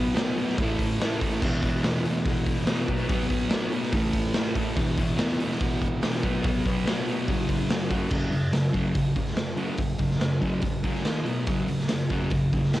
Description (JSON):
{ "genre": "garage rock duo or trio", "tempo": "143 BPM", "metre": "4/4", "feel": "straight", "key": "unclear", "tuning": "A4 = 440 Hz", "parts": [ { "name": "fuzz guitar", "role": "riff", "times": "0.0-12.8 s", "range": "E2 to D#4", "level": "-26 LUFS", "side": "equal", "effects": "distortion, cassette tape" }, { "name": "raw garage drum kit", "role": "drums", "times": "0.2-12.8 s", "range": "crash cymbal, hi-hat, kick drum, snare drum", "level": "-27 LUFS", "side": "equal", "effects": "cassette tape" } ], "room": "small room ambience", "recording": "home recording on cassette", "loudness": "-23 LUFS", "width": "side -15 dB against mid", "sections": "0.0-8.1 A section; 8.1-12.8 B section", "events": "none", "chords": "0.0 B5; 0.6 A5; 1.4 E5; 2.9 B5; 3.9 A5; 4.8 E5; 6.2 B5; 7.3 F#5; 11.1 D#5; 11.3 B5; 11.5 F#5" }